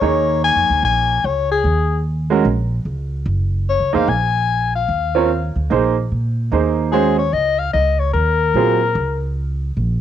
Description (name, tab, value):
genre	modal jazz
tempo	148 BPM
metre	4/4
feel	swing 64% on 8ths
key	Eb dorian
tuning	A4 = 439 Hz
part	breathy soprano saxophone	melody	0.0-9.3 s	Ab4 to Ab5	-18 LUFS	left 6 dB	cassette tape
part	clear baby grand piano	accompaniment	0.0-8.8 s	Gb3 to Db5	-18 LUFS	right 8 dB	cassette tape, plate reverb
part	upright bass	bass	0.0-10.0 s	Gb1 to Bb2	-20 LUFS	right 1 dB	none
room	light reverb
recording	home recording on cassette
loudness	-15 LUFS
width	side -10 dB against mid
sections	0.0-10.0 A section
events	none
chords	0.0 Eb7sus4; 6.5 Gbadd9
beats	| 0.02 0.43 0.83 1.24 | 1.64 2.05 2.45 2.86 | 3.27 3.67 4.08 4.48 | 4.89 5.29 5.70 6.11 | 6.51 6.92 7.33 7.74 | 8.14 8.55 8.96 9.36 | 9.77